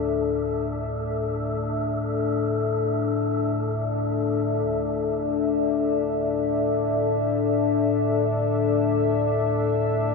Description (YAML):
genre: dark ambient drone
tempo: free time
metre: none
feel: none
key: unclear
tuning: A4 = 439 Hz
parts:
  - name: deep dark ambient pad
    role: sustained chords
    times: 0.0-10.1 s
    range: D4 to E5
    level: -23 LUFS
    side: left 4 dB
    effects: chorus, built-in reverb
  - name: deep rumbling drone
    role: drone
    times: 0.0-10.1 s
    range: D2 to A2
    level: -29 LUFS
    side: equal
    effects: built-in reverb
  - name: wind-like tuned noise texture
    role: texture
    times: 0.0-4.7 s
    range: A4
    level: -33 LUFS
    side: left 4 dB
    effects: built-in reverb
room: wet spring reverb, RT60 2.3 s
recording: studio ambience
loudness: -22 LUFS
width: side -3 dB against mid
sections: 0.0-4.7 A section; 4.7-10.1 B section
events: none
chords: 0.0 D5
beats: free time